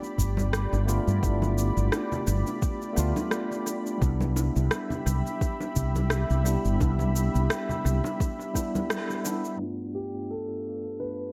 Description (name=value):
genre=sunset chillout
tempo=86 BPM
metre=4/4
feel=swing 56% on 16ths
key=C major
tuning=A4 = 441 Hz
part: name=tine electric piano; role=accompaniment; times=0.0-11.3 s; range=G2 to F4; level=-34 LUFS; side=equal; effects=analog delay, shimmer reverb
part: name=lush unison pad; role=sustained chords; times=0.0-11.3 s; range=D4 to B5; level=-38 LUFS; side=equal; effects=chorus, shimmer reverb
part: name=electronic cabasa and rim click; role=drums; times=0.0-11.3 s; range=none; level=-36 LUFS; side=equal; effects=overdrive, tape echo
part: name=bongos and congas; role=percussion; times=0.0-9.4 s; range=none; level=-38 LUFS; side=equal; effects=tape echo
part: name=mellow fretless electric bass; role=bass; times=0.2-8.0 s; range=G1 to G2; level=-27 LUFS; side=equal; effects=lush chorus
part: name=electronic kick drum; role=drums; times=0.2-8.7 s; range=none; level=-30 LUFS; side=equal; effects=overdrive
part: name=clear grand piano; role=melody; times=9.9-11.3 s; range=G4 to B4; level=-36 LUFS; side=equal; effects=analog delay, shimmer reverb
room=moderate plate reverb, RT60 1.9 s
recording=echo-heavy mix, low-pass filter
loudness=-27 LUFS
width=mono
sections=0.0-9.6 A section; 9.6-11.3 B section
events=band accent 8.9-9.2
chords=0.0 G7; 4.0 Cmaj7; 9.6 G7